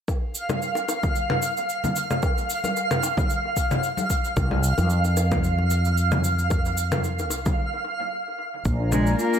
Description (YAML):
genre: organic downtempo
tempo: 112 BPM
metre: 4/4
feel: swing 55% on 16ths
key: unclear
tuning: A4 = 440 Hz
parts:
  - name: cabasa and congas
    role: drums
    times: 0.1-9.4 s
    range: none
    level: -29 LUFS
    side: equal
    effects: none
  - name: electronic kick drum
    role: drums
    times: 0.1-8.8 s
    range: none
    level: -25 LUFS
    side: equal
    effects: none
  - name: bongos and congas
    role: percussion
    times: 0.1-7.6 s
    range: none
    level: -31 LUFS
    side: left 2 dB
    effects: dub echo
  - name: twinkling granular texture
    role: texture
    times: 0.4-9.4 s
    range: F5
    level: -27 LUFS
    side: right 1 dB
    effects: built-in reverb
  - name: fretless electric bass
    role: bass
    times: 4.4-9.1 s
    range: Bb1 to F2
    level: -22 LUFS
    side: equal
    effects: sidechain pumping
  - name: warm analog pad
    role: sustained chords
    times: 8.7-9.4 s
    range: F4 to Bb5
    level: -27 LUFS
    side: left 2 dB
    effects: chorus, tremolo, sidechain pumping
  - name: folk marimba with soft mallets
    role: arpeggios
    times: 8.7-9.4 s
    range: Bb3 to F4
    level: -28 LUFS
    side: left 2 dB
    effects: low-pass filter, tape echo
  - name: warm cello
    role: melody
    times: 8.9-9.4 s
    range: Ab3 to Bb3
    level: -23 LUFS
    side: left 2 dB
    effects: none
room: light reverb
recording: echo-heavy mix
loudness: -21 LUFS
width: side -8 dB against mid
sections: 0.1-8.7 A section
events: stop 7.6-8.7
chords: 0.1 N.C.; 4.4 Csus4; 8.7 Bb7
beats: | 0.09 0.62 1.16 1.69 | 2.23 2.77 3.30 3.84 | 4.37 4.91 5.44 5.98 | 6.51 7.05 7.59 8.12 | 8.66 9.19